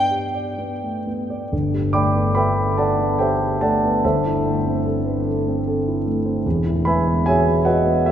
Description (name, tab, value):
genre	classical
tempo	41-50 BPM (dotted quarters)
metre	6/8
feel	rubato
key	G major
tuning	A4 = 441 Hz
part	dark grand piano	accompaniment	0.0-8.1 s	E1 to D6	-18 LUFS	equal	none
room	wet cathedral reverb, RT60 5.3 s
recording	recorded in a church or concert hall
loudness	-18 LUFS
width	side -9 dB against mid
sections	0.0-1.5 A section; 1.5-8.1 B section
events	none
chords	0.0 Gadd9; 4.0 Am7/G; 6.4 Eadd9